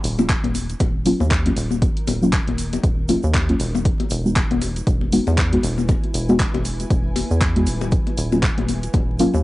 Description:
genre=deep house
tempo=118 BPM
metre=4/4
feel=swing 58% on 16ths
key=Eb phrygian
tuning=A4 = 440 Hz
part: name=rubbery square bass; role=bass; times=0.0-9.4 s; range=Eb1 to E2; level=-23 LUFS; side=equal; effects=sidechain pumping
part: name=deep house drum kit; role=drums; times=0.0-9.3 s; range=handclaps, hi-hat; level=-27 LUFS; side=equal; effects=small room ambience, cassette tape
part: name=tube shaker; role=percussion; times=0.0-9.4 s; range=none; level=-37 LUFS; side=right 9 dB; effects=none
part: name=granular cloud pad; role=texture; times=0.0-9.4 s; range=Eb4 to G#5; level=-37 LUFS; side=equal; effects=built-in reverb, sidechain pumping, cassette tape
part: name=deep mellow chord stab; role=stabs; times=0.2-9.3 s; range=Gb3 to Gb4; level=-20 LUFS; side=equal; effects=chorus, sidechain pumping, cassette tape, tape echo
part: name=congas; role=percussion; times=0.2-9.4 s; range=none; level=-26 LUFS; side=left 6 dB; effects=none
part: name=electronic kick drum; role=drums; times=0.3-9.1 s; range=none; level=-20 LUFS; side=equal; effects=small room ambience, cassette tape
room=little or no reverb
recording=home recording on cassette, vinyl crackle, nothing above 10.4 kHz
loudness=-17 LUFS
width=side -18 dB against mid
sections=0.0-9.4 A section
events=fade-in on ambient pad 0.0-9.4; filter sweep on synth stab 0.0-9.4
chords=0.0 Ebm9; 3.6 Emaj7; 7.9 Ebm9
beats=0.29 0.80 1.31 | 1.82 2.33 2.84 3.35 | 3.85 4.36 4.87 5.38 | 5.89 6.40 6.90 7.41 | 7.92 8.43 8.94

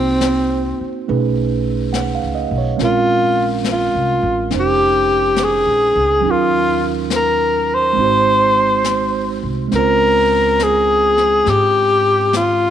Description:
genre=jazz ballad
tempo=69 BPM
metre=4/4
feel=swing 66% on 8ths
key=unclear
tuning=A4 = 441 Hz
part: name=breathy alto saxophone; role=melody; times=0.0-12.7 s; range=C4 to C5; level=-14 LUFS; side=left 1 dB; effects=none
part: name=mellow tine electric piano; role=accompaniment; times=0.0-12.7 s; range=Gb3 to F#5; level=-21 LUFS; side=right 11 dB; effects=none
part: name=upright bass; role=bass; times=0.0-12.7 s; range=F1 to Ab2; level=-24 LUFS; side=left 1 dB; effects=none
part: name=jazz brush drum kit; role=drums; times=0.2-12.7 s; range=brushed snare drum, hi-hat, snare drum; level=-28 LUFS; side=left 8 dB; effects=none
room=moderate plate reverb, RT60 1.8 s, small room ambience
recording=1960s-style stereo with parts hard left and right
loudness=-13 LUFS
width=side -10 dB against mid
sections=0.0-12.7 A section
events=none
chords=0.0 Cm7b5; 1.1 B13; 2.8 Bbm9; 6.2 Ebm9; 8.0 Ab7; 9.7 Dbmaj7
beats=0.22 1.07 1.93 | 2.78 3.64 4.51 5.37 | 6.23 7.10 7.97 8.85 | 9.73 10.60 11.47 12.34

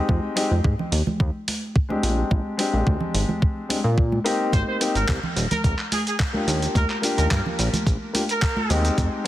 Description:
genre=nu-disco, nu disco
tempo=108 BPM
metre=4/4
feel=straight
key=unclear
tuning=A4 = 436 Hz
part: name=dark concert grand piano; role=accompaniment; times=0.0-9.3 s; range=Ab3 to G4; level=-26 LUFS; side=left 2 dB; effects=sidechain pumping, digital delay
part: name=chorused synth bass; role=bass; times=0.1-9.1 s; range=Eb1 to Bb2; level=-22 LUFS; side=equal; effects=none
part: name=electronic kick drum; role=drums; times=0.1-9.1 s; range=none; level=-22 LUFS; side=equal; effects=none
part: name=congas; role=percussion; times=0.1-9.1 s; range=none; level=-30 LUFS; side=right 1 dB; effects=none
part: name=dusty soul sampler-style drum kit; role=drums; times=0.4-9.1 s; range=handclaps, hi-hat, shaker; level=-28 LUFS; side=right 1 dB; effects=none
part: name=clear trumpet section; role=melody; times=4.5-8.8 s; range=Ab4 to C5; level=-29 LUFS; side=right 2 dB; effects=vintage 12-bit sampler grit, digital delay
room=light reverb, small room ambience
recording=heavily compressed radio sound, multiband compression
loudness=-20 LUFS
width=side -14 dB against mid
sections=0.0-9.3 A section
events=none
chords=0.1 Fm9; 2.0 Bb13; 4.5 Abmaj9; 6.5 Ebmaj9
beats=| 0.09 0.64 1.20 1.75 | 2.31 2.87 3.42 3.98 | 4.53 5.09 5.64 6.20 | 6.75 7.31 7.87 8.42 | 8.98

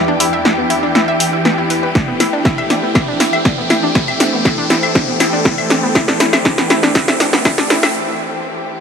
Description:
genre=melodic techno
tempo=120 BPM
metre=4/4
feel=straight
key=unclear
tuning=A4 = 442 Hz
part: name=warm symphonic string section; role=sustained chords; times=0.0-8.8 s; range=E2 to G4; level=-21 LUFS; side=equal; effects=sidechain pumping, low-pass filter
part: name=wide unison pluck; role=arpeggios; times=0.0-7.9 s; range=B3 to G5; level=-18 LUFS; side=equal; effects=sidechain pumping, tape echo
part: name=riser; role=sound effects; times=0.1-8.0 s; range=none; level=-23 LUFS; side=equal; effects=none
part: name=granular cloud pad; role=texture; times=0.0-8.0 s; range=E4 to G5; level=-23 LUFS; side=equal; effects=built-in reverb, sidechain pumping
part: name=techno drum kit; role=drums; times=0.2-7.9 s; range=claves, hi-hat, snare drum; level=-16 LUFS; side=equal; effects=overdrive
part: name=electronic kick drum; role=drums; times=2.0-7.6 s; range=none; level=-17 LUFS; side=equal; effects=overdrive
room=moderate huge ambient reverb, RT60 5.2 s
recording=dark, warm production, high-pass filter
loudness=-12 LUFS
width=side -6 dB against mid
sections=0.0-8.8 A section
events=build-up 0.0-8.8; drum fill 0.0-8.0; riser 0.1-8.0; break 8.0-8.8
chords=0.0 Em7; 2.0 Am7/E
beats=0.45 0.95 1.45 | 1.95 2.45 2.95 3.45 | 3.95 4.45 4.95 5.45 | 5.95 6.45 6.95 7.45 | 7.95 8.45

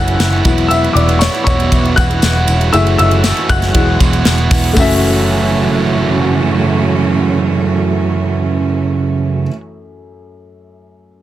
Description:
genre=piano-driven pop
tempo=118 BPM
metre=4/4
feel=straight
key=F# minor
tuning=A4 = 438 Hz
part: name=dark upright piano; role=accompaniment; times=0.0-11.2 s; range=F#2 to F#6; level=-17 LUFS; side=left 4 dB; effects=none
part: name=clear studio string section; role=sustained chords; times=0.0-9.5 s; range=C#3 to F#4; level=-21 LUFS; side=right 1 dB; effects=none
part: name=cranked stack guitar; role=riff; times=0.0-9.6 s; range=F#2 to F#4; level=-15 LUFS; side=right 5 dB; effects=overdrive
part: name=vintage muted picked electric bass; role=bass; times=0.0-9.5 s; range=E1 to F#1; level=-16 LUFS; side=equal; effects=none
part: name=modern studio drum kit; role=drums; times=0.1-4.9 s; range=hi-hat, kick drum, ride cymbal, snare drum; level=-16 LUFS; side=equal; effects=none
part: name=tambourine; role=percussion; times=0.2-5.0 s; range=none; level=-27 LUFS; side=left 7 dB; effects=none
room=little or no reverb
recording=dense, heavily limited modern master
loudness=-11 LUFS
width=side -13 dB against mid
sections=0.0-4.8 A section; 4.8-8.8 B section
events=upright piano solo 0.0-4.8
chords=0.5 Esus2; 2.7 F#m7; 3.8 Eadd9; 4.8 F#m7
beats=0.20 | 0.71 1.22 1.72 2.23 | 2.74 3.25 3.75 4.26 | 4.77 5.28 5.79 6.30 | 6.80 7.31 7.82 8.33

